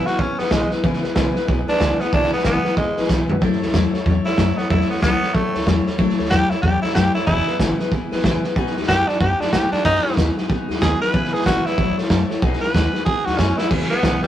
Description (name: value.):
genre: rockabilly.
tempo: 186 BPM.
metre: 4/4.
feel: swing 61% on 8ths.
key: E major.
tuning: A4 = 441 Hz.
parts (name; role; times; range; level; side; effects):
growling tenor saxophone; melody; 0.0-14.3 s; G3 to B4; -21 LUFS; right 1 dB; none.
picked steel-string acoustic guitar; accompaniment; 0.0-14.3 s; C#3 to C#5; -23 LUFS; left 3 dB; none.
upright bass; bass; 0.1-14.3 s; E1 to A2; -24 LUFS; equal; none.
vintage drum kit; drums; 0.1-14.3 s; crash cymbal, hi-hat, kick drum, snare drum, toms; -21 LUFS; equal; none.
room: light reverb.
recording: rough rehearsal-room recording, tube saturation.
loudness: -16 LUFS.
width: side -11 dB against mid.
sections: 0.0-13.7 A section.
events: tenor saxophone solo 0.0-13.7; drum fill 3.1-3.4, 13.5.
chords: 0.0 E6; 3.4 A6; 7.3 E6; 8.6 B6; 11.1 E6; 11.8 A6; 12.4 B6; 13.7 E6.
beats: 0.19 0.52 | 0.84 1.16 1.49 1.81 | 2.13 2.45 2.77 3.10 | 3.42 3.74 4.06 4.38 | 4.70 5.03 5.35 5.67 | 5.99 6.31 6.63 6.95 | 7.28 7.60 7.92 8.24 | 8.56 8.88 9.20 9.53 | 9.85 10.17 10.49 10.81 | 11.13 11.46 11.78 12.10 | 12.42 12.74 13.07 13.39 | 13.71 14.03.